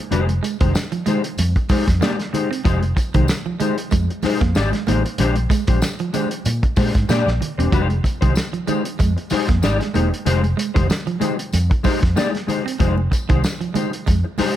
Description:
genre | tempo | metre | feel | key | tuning
funk | 95 BPM | 4/4 | swing 56% on 16ths | F dorian | A4 = 440 Hz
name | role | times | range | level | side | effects
mellow electric guitar | accompaniment | 0.1-14.6 s | Ab3 to D5 | -22 LUFS | left 5 dB | ensemble chorus
vintage muted fingered electric bass | bass | 0.1-14.4 s | E1 to Bb2 | -20 LUFS | equal | none
warm soul drum kit | drums | 0.1-14.6 s | hi-hat, kick drum, snare drum | -21 LUFS | equal | none
congas | percussion | 0.1-14.5 s | none | -31 LUFS | right 7 dB | none
clean electric guitar | riff | 0.3-14.4 s | Eb3 to C4 | -26 LUFS | right 7 dB | tube saturation, spring reverb
tambourine | percussion | 0.4-14.6 s | none | -37 LUFS | left 4 dB | none
room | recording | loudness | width
light reverb | none | -17 LUFS | side -12 dB against mid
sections
0.0-14.6 A section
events
none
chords
0.0 Fm9; 5.2 Bb13; 7.7 Fm9

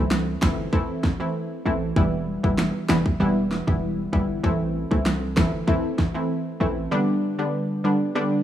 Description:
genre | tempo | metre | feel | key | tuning
dancehall | 97 BPM | 4/4 | straight | A minor | A4 = 440 Hz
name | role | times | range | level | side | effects
analog pluck | accompaniment | 0.0-8.4 s | D3 to E4 | -23 LUFS | equal | chorus, sidechain pumping
hard-hitting 808-style bass | bass | 0.0-6.9 s | E1 to C2 | -28 LUFS | equal | none
pop drum kit | drums | 0.1-6.1 s | finger snaps, kick drum, snare drum | -23 LUFS | equal | none
room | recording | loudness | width
light reverb | rough home demo mix, small room ambience | -21 LUFS | side -11 dB against mid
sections
0.0-8.4 A section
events
none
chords
0.0 Am; 2.0 Em; 4.4 Am; 6.9 G

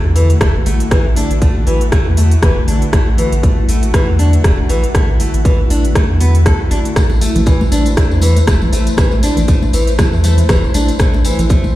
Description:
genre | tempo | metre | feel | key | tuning
afro house | 119 BPM | 4/4 | swing 56% on 16ths | unclear | A4 = 440 Hz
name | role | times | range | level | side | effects
ethereal airy pad | sustained chords | 0.0-11.8 s | D3 to C5 | -21 LUFS | left 1 dB | ensemble chorus, built-in reverb, sidechain pumping
nylon-string guitar | arpeggios | 0.0-11.6 s | E3 to A4 | -20 LUFS | left 1 dB | sidechain pumping, ping-pong delay
round analog bass | bass | 0.0-11.7 s | E1 to E2 | -14 LUFS | equal | sidechain pumping
house drum kit | drums | 0.2-11.6 s | hi-hat, rim click | -21 LUFS | equal | none
electronic kick drum | drums | 0.4-11.6 s | none | -13 LUFS | equal | none
congas | percussion | 7.0-11.7 s | none | -21 LUFS | left 1 dB | none
tambourine | percussion | 7.0-11.7 s | none | -28 LUFS | left 3 dB | none
room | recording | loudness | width
light reverb, small room ambience | played on a big sound system in a bare room, stone room reverb | -10 LUFS | side -15 dB against mid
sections
0.0-11.8 A section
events
none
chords
0.0 D; 7.0 Am

